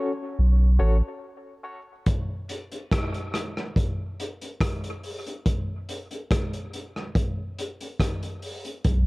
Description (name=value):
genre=dub reggae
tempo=71 BPM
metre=4/4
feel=straight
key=B minor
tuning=A4 = 440 Hz
part: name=barky reed electric piano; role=stabs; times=0.0-2.7 s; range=C#4 to D5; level=-32 LUFS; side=left 2 dB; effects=overdrive, fast tremolo, high-pass filter, dub echo
part: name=warm sub bass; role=bass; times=0.4-1.0, 8.9-9.1 s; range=A1 to B1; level=-18 LUFS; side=equal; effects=none
part: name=vintage drum kit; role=drums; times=2.1-9.1 s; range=hi-hat, kick drum, rim click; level=-26 LUFS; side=equal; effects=none
room=light reverb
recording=dark, warm production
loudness=-24 LUFS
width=side -24 dB against mid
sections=0.0-9.1 A section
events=break 0.0-2.1, 2.1-8.8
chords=0.0 F#m; 2.1 Bm; 5.5 N.C.